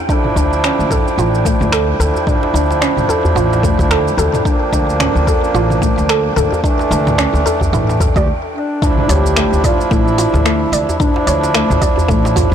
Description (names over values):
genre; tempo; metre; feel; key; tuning
organic downtempo; 110 BPM; 4/4; swing 57% on 16ths; D harmonic minor; A4 = 440 Hz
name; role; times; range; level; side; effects
wind-like tuned noise texture; texture; 0.0-8.3 s; G5; -29 LUFS; right 2 dB; built-in reverb
hand-pumped harmonium; accompaniment; 0.1-12.5 s; E3 to G4; -18 LUFS; right 2 dB; sidechain pumping, ping-pong delay
mallet-like synth pluck; arpeggios; 0.1-12.5 s; A3 to D5; -19 LUFS; equal; chorus, ping-pong delay
deep house drum kit; drums; 0.1-12.5 s; finger snaps, hi-hat, shaker, toms; -21 LUFS; equal; overdrive, soft clipping on snare
electronic kick drum; drums; 0.1-12.5 s; none; -17 LUFS; equal; overdrive
upright bass; bass; 0.4-12.5 s; A1 to D2; -17 LUFS; equal; sidechain pumping
djembe; percussion; 0.4-12.5 s; none; -22 LUFS; right 1 dB; none
mellow duduk; melody; 8.6-12.1 s; D4 to G4; -23 LUFS; equal; ping-pong delay
impact; sound effects; 8.8-11.0 s; none; -25 LUFS; equal; none
room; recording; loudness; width
light reverb; blown-out, overdriven recording, overdrive; -12 LUFS; side -9 dB against mid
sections
0.0-8.8 A section; 8.8-12.5 B section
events
filter sweep on synth pluck 0.0-8.8; stop 8.3-8.8; impact 8.8-11.0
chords
0.1 Dmadd9; 4.5 Gm7/D; 6.6 A7sus4; 8.8 Dmadd9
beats
| 0.09 0.64 1.18 1.73 | 2.27 2.82 3.36 3.91 | 4.46 5.00 5.55 6.09 | 6.64 7.18 7.73 8.27 | 8.82 9.36 9.91 10.46 | 11.00 11.55 12.09